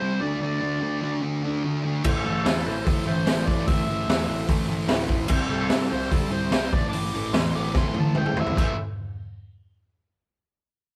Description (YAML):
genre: garage rock duo or trio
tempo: 147 BPM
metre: 4/4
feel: straight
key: A minor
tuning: A4 = 440 Hz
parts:
  - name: overdriven harmonica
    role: melody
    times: 0.0-8.8 s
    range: E4 to D6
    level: -33 LUFS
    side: equal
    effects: none
  - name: combo organ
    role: sustained chords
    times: 0.0-8.8 s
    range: E4 to D5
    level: -42 LUFS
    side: equal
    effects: none
  - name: fuzz guitar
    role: riff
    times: 0.0-8.7 s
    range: A2 to D4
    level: -30 LUFS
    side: equal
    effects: distortion
  - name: fuzz picked electric bass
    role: bass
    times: 2.0-8.8 s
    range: A1 to G2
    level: -34 LUFS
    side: equal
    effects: overdrive
  - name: raw garage drum kit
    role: drums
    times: 2.0-8.7 s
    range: crash cymbal, hi-hat, kick drum, snare drum, toms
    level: -26 LUFS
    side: equal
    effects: none
room: moderate studio reverb, RT60 0.6 s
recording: band playing live in one room, lossy compression artefacts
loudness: -24 LUFS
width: mono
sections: 0.0-8.6 A section; 8.6-10.2 B section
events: drum fill 7.7-8.6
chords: 0.2 D; 2.0 Am; 5.3 C; 6.7 Am; 8.6 A5